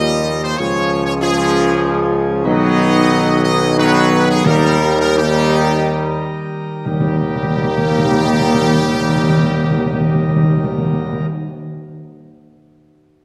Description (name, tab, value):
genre	classical, ceremonial fanfare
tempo	66-98 BPM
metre	3/4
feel	straight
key	Eb mixolydian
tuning	A4 = 439 Hz
part	brilliant trumpet section	melody	0.0-11.3 s	G4 to Eb5	-24 LUFS	equal	none
part	chamber organ, principal chorus	sustained chords	0.0-11.3 s	Eb3 to B4	-24 LUFS	equal	none
part	clear trombone section	sustained chords	0.0-11.3 s	Db3 to G3	-25 LUFS	equal	none
part	dark French horn section	sustained chords	0.0-11.3 s	Ab3 to F4	-22 LUFS	equal	none
part	warm tuba	bass	0.0-11.2 s	B1 to Eb2	-21 LUFS	equal	none
part	timpani	percussion	4.5-11.3 s	Eb3	-20 LUFS	equal	none
room	wet concert hall reverb, RT60 2.0 s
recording	none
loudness	-15 LUFS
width	mono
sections	0.0-6.9 A section; 6.9-12.1 B section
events	slowing down 1.5-6.9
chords	0.0 Ebadd9; 0.6 Db; 2.5 B; 4.5 Eb